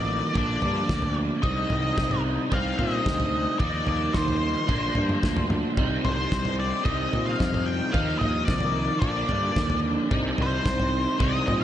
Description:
psychedelic rock; 111 BPM; 4/4; straight; C minor; A4 = 440 Hz
octave-fuzz lead guitar; melody; 0.0-11.6 s; C5 to G5; -29 LUFS; left 2 dB; wah, distortion, analog delay
overdriven electric guitar; riff; 0.0-11.6 s; Bb2 to Eb4; -27 LUFS; right 1 dB; rotary speaker
fuzz picked electric bass; bass; 0.0-11.6 s; A1 to Bb2; -29 LUFS; equal; overdrive
cloth-damped thuddy drum kit; drums; 0.4-11.6 s; kick drum, snare drum, toms; -28 LUFS; equal
moderate lush hall reverb, RT60 2.3 s; dreamy mix soaked in reverb, nothing above 10.7 kHz; -22 LUFS; side -11 dB against mid
0.0-11.6 A section
0.3 Bb6; 1.4 Cm; 3.6 Ebsus2; 4.7 Bb6; 5.8 Cm; 7.9 Ebsus2; 9.0 Bb6; 10.1 Cm
0.35 0.89 | 1.43 1.98 2.52 3.06 | 3.60 4.14 4.69 5.23 | 5.77 6.31 6.86 7.40 | 7.94 8.48 9.03 9.57 | 10.11 10.65 11.20

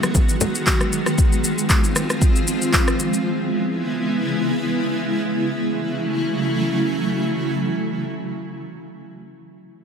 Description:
amapiano; 116 BPM; 4/4; swing 55% on 16ths; F# dorian; A4 = 440 Hz
granular cloud pad; sustained chords; 0.0-8.8 s; C#3 to F#4; -21 LUFS; right 1 dB; built-in reverb, sidechain pumping
deep house drum kit; drums; 0.0-3.2 s; handclaps, kick drum, rim click, shaker; -18 LUFS; equal
bongos and congas; percussion; 0.0-1.2 s; -25 LUFS; left 5 dB
light reverb; -18 LUFS; side -7 dB against mid
0.0-5.3 A section; 5.3-9.5 B section
drop 0.0-5.3
0.0 G#m7; 1.2 Fm7; 3.0 C#m7; 5.3 F#m7
0.15 0.67 | 1.18 1.70 2.22 2.73 | 3.25 3.77 4.29 4.80 | 5.32 5.84 6.36 6.87 | 7.39 7.91 8.43

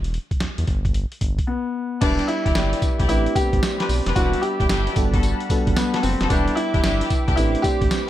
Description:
R&B, new jack swing; 112 BPM; 4/4; swing 65% on 16ths; E minor; A4 = 436 Hz
round analog bass; bass; 0.0-7.9 s; E1 to E2; -23 LUFS; equal
boom bap sampler-style drum kit; drums; 0.0-8.1 s; crash cymbal, hi-hat, kick drum, snare drum, tambourine; -22 LUFS; equal; gated reverb
dark concert grand piano; melody; 1.5-8.1 s; B3 to G4; -24 LUFS; left 1 dB; ping-pong delay
FM electric piano with auto-pan; accompaniment; 2.0-8.1 s; G3 to D5; -28 LUFS; right 2 dB
brassy analog pad; sustained chords; 2.0-8.1 s; G3 to D6; -32 LUFS; equal; chorus
warm studio string section; stabs; 2.0-7.4 s; B3 to D5; -29 LUFS; left 3 dB
little or no reverb; -18 LUFS; side -13 dB against mid
0.0-2.0 A section; 2.0-8.1 B section
break 1.5-2.0
0.0 N.C.; 0.7 G; 2.0 Em7; 3.1 Am11; 4.2 Em7; 5.0 Gmaj9; 6.3 Em7; 7.4 Am11
0.41 0.94 1.48 | 2.02 2.55 3.09 3.62 | 4.16 4.69 5.23 5.76 | 6.30 6.84 7.37 7.91

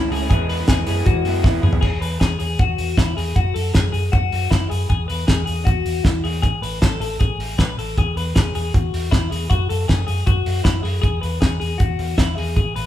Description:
jangly indie pop; 157 BPM; 4/4; straight; E major; A4 = 440 Hz
electric guitar through a small old amp; accompaniment; 0.0-1.8 s; E2 to E4; -25 LUFS; right 4 dB
twelve-string electric guitar; arpeggios; 0.0-12.9 s; E4 to B4; -25 LUFS; left 5 dB; spring reverb
vintage muted fingered electric bass; bass; 0.0-12.9 s; A1 to F#2; -23 LUFS; equal
cloth-damped thuddy drum kit; drums; 0.1-12.8 s; crash cymbal, hi-hat, kick drum, snare drum, toms; -19 LUFS; equal
moderate large studio reverb, RT60 1.0 s; band playing live in one room; -17 LUFS; side -12 dB against mid
0.0-1.8 A section; 1.8-12.9 B section
drum fill 1.4-1.8
0.3 E; 3.4 F#m7; 4.9 E; 6.4 Asus2; 8.0 E; 9.5 F#7(no3); 11.0 E
| 0.30 0.68 1.07 1.45 | 1.83 2.21 2.60 2.98 | 3.37 3.75 4.13 4.52 | 4.90 5.29 5.67 6.05 | 6.44 6.82 7.21 7.59 | 7.97 8.35 8.74 9.12 | 9.50 9.88 10.27 10.65 | 11.03 11.41 11.80 12.18 | 12.56

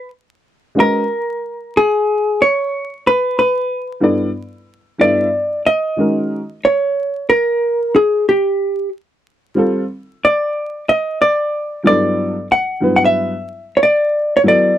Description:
hip hop; 92 BPM; 4/4; swing 62% on 16ths; A4 = 445 Hz
vintage hollow-body jazz guitar; melody; 0.0-14.8 s; G4 to F#5; -14 LUFS; equal
dark upright piano; accompaniment; 0.8-14.7 s; G2 to E5; -16 LUFS; equal
light reverb; dry, close 1970s-style studio recording, vinyl crackle; -14 LUFS; side -11 dB against mid
0.0-6.0 A section; 6.0-14.8 B section
0.0 N.C.; 0.8 G#m9; 3.4 Gadd9; 6.0 D#m7; 8.6 Fadd9; 11.2 Gmaj9; 13.8 B5
0.11 | 0.76 1.41 2.06 2.72 | 3.37 4.02 4.67 5.32 | 5.98 6.63 7.28 7.93 | 8.59 9.24 9.89 10.54 | 11.19 11.85 12.50 13.15 | 13.80 14.46

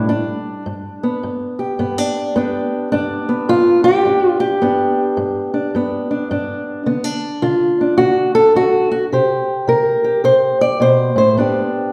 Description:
acoustic country blues, solo or duo; 106 BPM; 4/4; swing 63% on 8ths; G mixolydian; A4 = 441 Hz
fingerpicked old ladder-braced acoustic guitar; solo; 0.0-11.9 s; G2 to D5; -16 LUFS; equal
wet recital hall reverb, RT60 1.3 s; heard from further back in the room; -16 LUFS; mono
0.0-11.9 A section
0.1 G; 6.9 D; 9.1 C5; 11.4 G
| 0.09 0.66 1.22 1.79 | 2.35 2.92 3.48 4.04 | 4.61 5.17 5.74 6.30 | 6.87 7.43 7.99 8.56 | 9.12 9.68 10.25 10.81 | 11.37

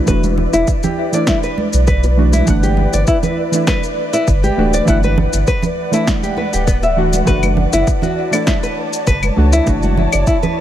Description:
organic downtempo; 100 BPM; 4/4; straight; A4 = 442 Hz
deep mellow chord stab; accompaniment; 0.0-10.6 s; E3 to F#5; -21 LUFS; right 2 dB; wide subtle chorus, sidechain pumping, ping-pong delay
ethereal airy pad; sustained chords; 0.0-10.6 s; E4 to A5; -22 LUFS; equal; ensemble chorus, built-in reverb, sidechain pumping
nylon-string guitar; arpeggios; 0.1-10.6 s; B3 to E5; -19 LUFS; left 1 dB; low-pass filter, ping-pong delay
warm sub bass; bass; 0.1-10.2 s; D1 to C#2; -16 LUFS; equal
electronic kick drum; drums; 0.1-10.4 s; -18 LUFS; equal; overdrive
electronic shaker, snare drum and claves; drums; 0.1-10.5 s; -23 LUFS; left 2 dB; overdrive
congas and bongos; percussion; 0.2-10.5 s; -22 LUFS; right 4 dB
light reverb, digital ambience; -12 LUFS; side -11 dB against mid
0.0-10.6 A section
0.0 E7(no3); 2.5 Gmaj7; 7.3 Dmaj7/F#
| 0.07 0.68 1.27 1.88 | 2.48 3.08 3.67 4.28 | 4.88 5.47 6.08 6.67 | 7.28 7.88 8.47 9.07 | 9.68 10.28

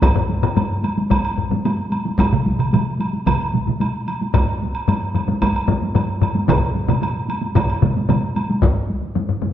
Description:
japanese traditional, taiko drum ensemble; 112 BPM; 4/4; straight
taiko ensemble; percussion; 0.0-9.5 s; -22 LUFS; equal
taiko ensemble; percussion; 0.0-8.8 s; -21 LUFS; equal
woodblock; percussion; 0.0-8.5 s; -26 LUFS; right 2 dB
taiko ensemble; percussion; 0.2-9.5 s; -22 LUFS; left 3 dB
taiko ensemble; percussion; 2.3-8.2 s; -21 LUFS; right 2 dB
wet recital hall reverb, RT60 1.5 s; lossy compression artefacts; -17 LUFS; side -11 dB against mid
0.0-8.6 A section
| 0.03 0.57 1.11 1.65 | 2.19 2.73 3.27 3.81 | 4.35 4.89 5.42 5.96 | 6.49 7.03 7.56 8.09 | 8.62 9.15

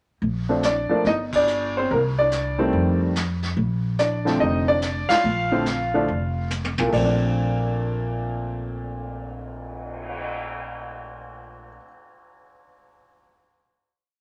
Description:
jazz piano trio; 143 BPM; 4/4; swing 66% on 8ths; Bb major; A4 = 440 Hz
upright bass; bass; 0.2-11.8 s; F1 to F2; -29 LUFS; equal
vintage brush drum kit; drums; 0.2-10.2 s; brushed snare drum, crash cymbal, cymbal swell, hi-hat, kick drum, ride cymbal, snare drum, toms; -35 LUFS; equal
warm upright piano; melody; 0.5-11.9 s; Bb2 to F5; -24 LUFS; equal
wet studio reverb, RT60 0.5 s; -23 LUFS; mono
0.2-6.9 A section; 6.9-10.3 final chord
band accent 1.3, 5.0; drum fill 6.5-6.9
0.2 Bbmaj7; 1.1 G5; 1.9 N.C.; 2.7 F9; 3.6 Bbmaj7; 6.9 Bbmaj9
| 0.21 0.63 1.05 1.47 | 1.89 2.31 2.73 3.15 | 3.57 3.99 4.41 4.83 | 5.25 5.67 6.09 6.51 | 6.93 7.35 7.77 8.20 | 8.62 9.04 9.46 9.88

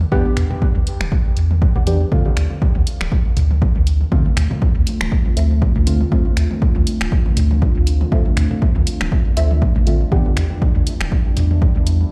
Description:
dub techno; 120 BPM; 4/4; swing 56% on 16ths; D dorian; A4 = 442 Hz
pure sine sub bass; bass; 0.0-12.1 s; D1 to E2; -19 LUFS; equal; tube saturation, sidechain pumping
electronic toms; percussion; 0.0-12.1 s; -30 LUFS; equal; sidechain pumping on toms, dub echo
filtered dub chord stab; riff; 0.1-10.3 s; F4 to F#5; -34 LUFS; equal; phaser, sidechain pumping, dub echo
deep mellow chord stab; stabs; 0.1-10.3 s; D3 to G4; -28 LUFS; equal; chorus, phaser, sidechain pumping, dub echo
electronic kick drum; drums; 0.1-11.7 s; -19 LUFS; equal
punchy analog drum machine; drums; 0.4-12.0 s; finger snaps, hi-hat; -30 LUFS; equal; dub echo
deep dark ambient pad; sustained chords; 3.9-12.1 s; G3 to F4; -29 LUFS; equal; chorus, built-in reverb, vintage 12-bit sampler grit, sidechain pumping
digital ambience; played on a big sound system in a bare room, large studio reverb; -17 LUFS; mono
0.0-12.1 A section
0.0 Em7; 2.1 Dm7; 10.1 Em7
| 0.12 0.62 1.12 1.62 | 2.12 2.62 3.12 3.62 | 4.12 4.62 5.12 5.62 | 6.12 6.62 7.12 7.62 | 8.12 8.62 9.12 9.62 | 10.12 10.62 11.12 11.62 | 12.12

